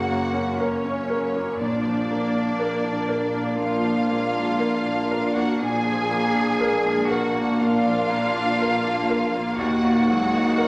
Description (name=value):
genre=cinematic, emotional film score for orchestra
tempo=60 BPM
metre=4/4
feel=rubato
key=unclear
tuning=A4 = 440 Hz
part: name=rich symphonic violin section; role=melody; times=0.0-10.7 s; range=C#5 to G#5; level=-37 LUFS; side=equal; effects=none
part: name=rich studio violin section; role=second line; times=0.0-10.7 s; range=C#5 to G#5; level=-32 LUFS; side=equal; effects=none
part: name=bright baby grand piano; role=accompaniment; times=0.0-10.7 s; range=D#2 to A#4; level=-27 LUFS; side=equal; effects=none
part: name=rich symphonic viola section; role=accompaniment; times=0.0-10.7 s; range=E#3 to D4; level=-37 LUFS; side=equal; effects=none
part: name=warm French horn section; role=sustained chords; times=0.0-10.7 s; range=A#3 to D#4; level=-29 LUFS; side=equal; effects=none
part: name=clear symphonic double bass section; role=bass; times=0.0-10.7 s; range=A#1 to F#2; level=-37 LUFS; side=equal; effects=none
part: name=rich symphonic cello section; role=bass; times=0.0-10.7 s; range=C#4 to G#4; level=-30 LUFS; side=equal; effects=none
room=wet scoring stage reverb, RT60 1.6 s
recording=none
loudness=-23 LUFS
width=mono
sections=0.0-10.7 A section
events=none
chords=0.0 F#; 1.6 A#; 9.6 D#m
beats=0.61 | 1.61 2.61 3.60 4.60 | 5.61 6.60 7.60 8.59 | 9.58 10.58